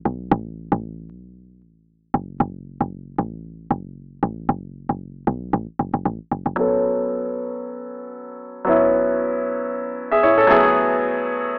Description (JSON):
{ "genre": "amapiano", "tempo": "115 BPM", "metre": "4/4", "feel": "swing 55% on 16ths", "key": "A major", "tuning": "A4 = 440 Hz", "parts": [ { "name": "deep log drum bass", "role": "bass", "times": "0.0-6.6 s", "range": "F#1 to B1", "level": "-23 LUFS", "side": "equal", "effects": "none" }, { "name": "bright concert grand piano", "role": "accompaniment", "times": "6.6-11.6 s", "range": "F#3 to E5", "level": "-18 LUFS", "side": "equal", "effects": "low-pass filter" } ], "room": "light reverb, studio ambience", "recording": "small speaker sound", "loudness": "-19 LUFS", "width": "side -29 dB against mid", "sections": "0.0-6.6 A section; 6.6-11.6 B section", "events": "drop 0.0-6.6; filter sweep on grand piano 6.6-11.6", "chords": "0.0 Asus2; 2.1 F#m; 6.6 A69", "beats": "| 0.32 0.84 1.36 1.88 | 2.40 2.92 3.44 3.97 | 4.49 5.01 5.53 6.05 | 6.58 7.10 7.62 8.14 | 8.66 9.18 9.71 10.23 | 10.75 11.27" }